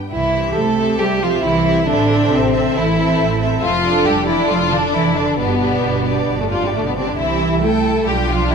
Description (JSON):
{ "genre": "quick classical-period movement for string orchestra", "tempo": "135 BPM", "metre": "4/4", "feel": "straight", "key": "C major", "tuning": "A4 = 440 Hz", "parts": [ { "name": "rich chamber violin section", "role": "second line", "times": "0.1-8.5 s", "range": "G3 to A4", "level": "-18 LUFS", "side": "left 2 dB", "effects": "none" }, { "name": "rich chamber cello section", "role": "bass", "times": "0.1-8.5 s", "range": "F2 to A3", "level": "-21 LUFS", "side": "right 3 dB", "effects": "none" }, { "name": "rich chamber double bass section", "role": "bass", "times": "0.1-8.5 s", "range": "F1 to C2", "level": "-23 LUFS", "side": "right 4 dB", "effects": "none" }, { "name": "rich chamber violin section", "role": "melody", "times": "0.3-8.5 s", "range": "D5 to G5", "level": "-27 LUFS", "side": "left 4 dB", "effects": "none" }, { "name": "warm symphonic viola section", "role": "accompaniment", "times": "0.3-8.5 s", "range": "C4 to A4", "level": "-21 LUFS", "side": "right 3 dB", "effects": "none" } ], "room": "moderate scoring stage reverb, RT60 1.8 s", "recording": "none", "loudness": "-14 LUFS", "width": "side -6 dB against mid", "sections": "0.1-8.5 A section", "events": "none", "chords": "0.1 C; 1.9 Am; 3.6 Dm/F; 5.4 G; 7.2 C" }